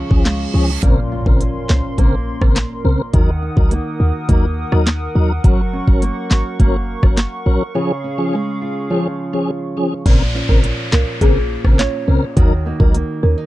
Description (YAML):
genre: dancehall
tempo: 104 BPM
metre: 4/4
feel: straight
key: Bb minor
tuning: A4 = 439 Hz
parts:
  - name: hollow soft pad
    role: sustained chords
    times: 0.0-10.0 s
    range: Db4 to Eb6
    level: -28 LUFS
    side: equal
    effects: chorus, sidechain pumping
  - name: nylon-string guitar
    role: arpeggios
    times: 0.0-13.5 s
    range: Bb2 to C5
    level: -24 LUFS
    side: right 1 dB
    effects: none
  - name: short 808-style bass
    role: bass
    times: 0.0-13.4 s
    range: Gb1 to Eb2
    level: -17 LUFS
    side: equal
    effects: none
  - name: reverse cymbal, impact and downlifter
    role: sound effects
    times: 0.0-3.1, 10.1-13.5 s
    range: none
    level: -29 LUFS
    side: equal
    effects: none
  - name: mellow tonewheel organ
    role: accompaniment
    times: 0.1-13.0 s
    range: Db3 to Bb4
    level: -19 LUFS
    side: left 1 dB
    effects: chorus vibrato, fast rotary speaker, sidechain pumping
  - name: island pop drum kit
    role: drums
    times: 0.1-13.1 s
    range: crash cymbal, handclaps, hi-hat, kick drum, rim click, snare drum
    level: -14 LUFS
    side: equal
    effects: none
  - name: folk marimba with medium mallets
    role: melody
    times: 10.5-13.4 s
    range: Ab4 to Bb4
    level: -23 LUFS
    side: equal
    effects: none
  - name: soft synth bell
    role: second line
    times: 11.8-12.6 s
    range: Db5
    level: -26 LUFS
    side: right 8 dB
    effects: chorus, ping-pong delay
room: little or no reverb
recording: dark, warm production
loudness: -14 LUFS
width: side -16 dB against mid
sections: 0.8-10.1 A section; 10.1-13.5 B section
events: reverse cymbal 0.0-0.8; impact 0.8-3.1; break 7.8-10.1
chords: 0.0 Db; 0.8 Bbmadd9; 3.1 Ebm; 5.4 Gb; 7.8 Db; 10.1 Bbmadd9; 12.4 Ebm